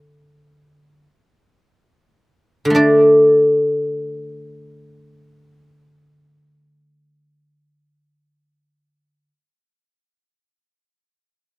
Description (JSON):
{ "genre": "chinese traditional, Chinese solo plucked strings", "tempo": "free time", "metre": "none", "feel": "none", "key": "unclear", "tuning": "A4 = 441 Hz", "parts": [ { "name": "guzheng", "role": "solo", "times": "0.0-9.3 s", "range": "D3 to D5", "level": "-12 LUFS", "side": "equal", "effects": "none" } ], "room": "little or no reverb", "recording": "recorded outdoors, with no room sound", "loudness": "-12 LUFS", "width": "side -24 dB against mid", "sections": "0.0-2.8 A section; 2.8-9.1 B section", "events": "slowing down 0.0-2.8", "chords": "none" }